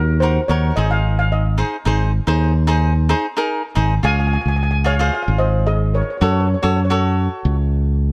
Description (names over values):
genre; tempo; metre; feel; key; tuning
calypso; 110 BPM; 4/4; swing 53% on 16ths; Db major; A4 = 445 Hz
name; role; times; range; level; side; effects
steel pan; melody; 0.0-6.9 s; Ab4 to Ab5; -25 LUFS; equal; none
fingered electric bass; bass; 0.0-8.1 s; Ab1 to Gb2; -19 LUFS; equal; none
cavaquinho; accompaniment; 0.2-7.6 s; Eb4 to Db5; -24 LUFS; equal; none
room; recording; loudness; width
light reverb; none; -18 LUFS; mono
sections
0.0-1.9 A section; 1.9-4.0 B section; 4.0-8.1 C section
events
steel pan solo 0.0-1.9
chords
0.0 Ebm; 0.8 Ab; 4.0 Db; 6.2 Gbm